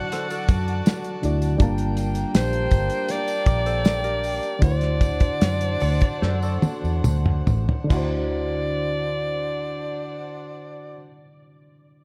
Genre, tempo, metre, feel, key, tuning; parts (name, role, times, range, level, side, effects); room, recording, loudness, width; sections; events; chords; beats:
lush 1970s-style soul; 69-81 BPM; 4/4; straight; A4 = 440 Hz
bright alto saxophone; melody; 0.0-11.0 s; C5 to F#5; -30 LUFS; equal; tape echo
warm studio violin section; second line; 0.0-11.0 s; Bb3 to A5; -36 LUFS; equal
reed electric piano; accompaniment; 0.0-12.0 s; D3 to A5; -33 LUFS; equal
semi-hollow electric guitar; riff; 0.0-7.7 s; F#4 to F#5; -37 LUFS; equal; phaser
vibraphone with soft mallets; texture; 0.0-11.0 s; F#3 to G4; -41 LUFS; equal
cloth-damped thuddy drum kit; drums; 0.1-8.1 s; crash cymbal, hi-hat, kick drum, snare drum, toms; -24 LUFS; equal
tambourine; percussion; 0.3-8.3 s; -50 LUFS; equal
vintage muted fingered electric bass; bass; 0.5-11.0 s; G1 to F#2; -27 LUFS; equal
small room ambience; dark, warm production; -23 LUFS; mono
0.0-7.9 A section; 7.9-11.4 B section
slowing down 1.6-7.9; drum fill 6.2-7.9
0.0 D7; 1.6 Gm7; 4.6 D7
0.12 0.86 | 1.60 2.34 3.09 3.85 | 4.62 5.41 6.22 7.05 | 7.90 8.77 9.64 10.52